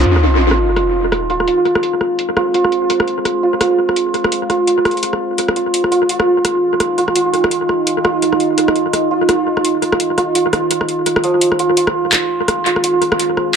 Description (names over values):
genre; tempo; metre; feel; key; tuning
half-time drum and bass; 169 BPM; 4/4; swing 58% on 16ths, half-time; F minor; A4 = 443 Hz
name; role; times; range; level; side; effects
deep dark ambient pad; sustained chords; 0.0-13.6 s; Eb4 to C6; -22 LUFS; right 3 dB; chorus, built-in reverb, vintage 12-bit sampler grit
santur; arpeggios; 0.0-13.6 s; F3 to F4; -15 LUFS; right 2 dB; vintage 12-bit sampler grit, low-pass filter, analog delay
drum and bass drum kit; drums; 0.1-13.5 s; crash cymbal, handclaps, hi-hat, rim click; -18 LUFS; equal; low-pass filter on snare, low-pass filter on hats, low-pass filter on cymbals, low-pass filter on room, analog delay
sub drop; sound effects; 0.1-1.5 s; none; -17 LUFS; equal; none
room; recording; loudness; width
moderate spring reverb, RT60 1.2 s, digital ambience; echo-heavy mix; -13 LUFS; side -6 dB against mid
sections
0.1-11.4 A section; 11.4-13.6 B section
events
impact 0.1-1.5; filter sweep on drum 0.1-11.4; filter sweep on santur 0.1-11.4, 11.4-13.6; build-up 11.4-13.6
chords
0.1 Fm; 5.7 Eb; 11.4 Fm